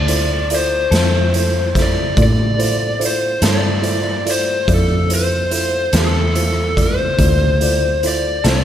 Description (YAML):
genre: slow blues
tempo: 48 BPM (dotted quarters)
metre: 12/8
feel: straight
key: D minor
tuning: A4 = 441 Hz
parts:
  - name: lead guitar through a small cranked amp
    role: melody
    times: 0.0-8.6 s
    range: A4 to D5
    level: -19 LUFS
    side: left 2 dB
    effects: overdrive, slapback echo
  - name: vintage muted fingered electric bass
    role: bass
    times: 0.0-8.6 s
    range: C2 to A2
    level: -18 LUFS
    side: equal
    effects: none
  - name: warm concert grand piano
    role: accompaniment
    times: 0.1-8.6 s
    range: E4 to D5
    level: -24 LUFS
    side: right 4 dB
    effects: slapback echo
  - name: raw garage drum kit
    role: drums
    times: 0.1-8.6 s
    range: hi-hat, kick drum, snare drum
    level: -19 LUFS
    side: equal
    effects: none
  - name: electric guitar through a small old amp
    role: accompaniment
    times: 0.9-8.6 s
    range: D3 to A4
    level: -27 LUFS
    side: left 5 dB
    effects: tremolo, slapback echo
room: light reverb, studio reverb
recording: none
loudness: -14 LUFS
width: side -10 dB against mid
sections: 0.0-8.6 A section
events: none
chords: 0.0 Dm7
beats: 0.92 2.18 3.43 | 4.69 5.94 7.19 8.44